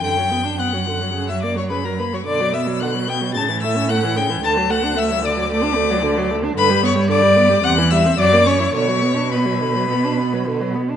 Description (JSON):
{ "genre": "quick classical-period movement for string quartet", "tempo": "110 BPM", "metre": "4/4", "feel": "uneven beats, rubato", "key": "B minor", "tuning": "A4 = 444 Hz", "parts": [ { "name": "clear violin", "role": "melody", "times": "0.0-10.8 s", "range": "A#5 to A6", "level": "-23 LUFS", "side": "left 8 dB", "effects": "none" }, { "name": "rich violin", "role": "second line", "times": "0.0-10.7 s", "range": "A#4 to A5", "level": "-20 LUFS", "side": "left 3 dB", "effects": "none" }, { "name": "warm viola", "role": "accompaniment", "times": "0.0-11.0 s", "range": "C3 to E4", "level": "-21 LUFS", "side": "right 2 dB", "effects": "none" }, { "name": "rich cello", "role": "bass", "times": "0.0-10.8 s", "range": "D2 to B2", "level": "-22 LUFS", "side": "right 3 dB", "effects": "none" } ], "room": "moderate scoring stage reverb, RT60 1.8 s", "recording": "nothing above 11.0 kHz", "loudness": "-16 LUFS", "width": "side -9 dB against mid", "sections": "0.0-11.0 A section", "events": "none", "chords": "0.0 Bm/F#; 1.1 F#; 2.3 Bm; 3.4 A; 4.4 D; 6.6 G; 7.6 C/E; 8.2 F#7; 8.7 Bm", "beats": "| 0.04 0.59 1.15 1.71 | 2.27 2.81 3.36 3.90 | 4.44 4.98 5.51 6.05 | 6.58 7.11 7.64 8.19 | 8.75 9.32 9.90 10.47" }